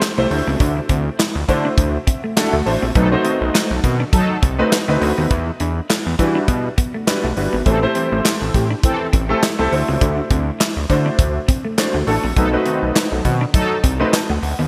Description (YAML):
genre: early-eighties boogie funk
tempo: 102 BPM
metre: 4/4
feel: swing 56% on 16ths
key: unclear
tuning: A4 = 441 Hz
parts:
  - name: warm grand piano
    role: accompaniment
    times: 0.0-14.7 s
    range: G3 to A5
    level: -23 LUFS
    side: equal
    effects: ensemble chorus
  - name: modern studio drum kit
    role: drums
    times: 0.0-14.6 s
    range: handclaps, hi-hat, kick drum, snare drum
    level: -21 LUFS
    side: equal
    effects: gated reverb
  - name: clean electric guitar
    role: riff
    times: 0.2-14.7 s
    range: A3 to E4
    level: -30 LUFS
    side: equal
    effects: lush chorus
  - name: fat analog bass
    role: bass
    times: 0.2-14.7 s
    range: G1 to E3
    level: -22 LUFS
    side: equal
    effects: none
  - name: mellow synth brass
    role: second line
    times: 3.0-13.8 s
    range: D#3 to A4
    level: -25 LUFS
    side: equal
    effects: chorus
room: moderate lush hall reverb, RT60 2.8 s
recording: bright 1980s-style digital production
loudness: -18 LUFS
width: mono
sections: 0.0-14.7 A section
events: grand piano fill 1.8-3.0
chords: 0.3 D9; 3.0 B7b9; 5.3 Em9; 7.7 Am7; 9.7 D9; 12.4 B7b9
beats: 0.01 | 0.60 1.19 1.78 2.37 | 2.95 3.54 4.13 4.72 | 5.31 5.89 6.48 7.07 | 7.66 8.25 8.84 9.43 | 10.01 10.60 11.19 11.78 | 12.37 12.95 13.54 14.13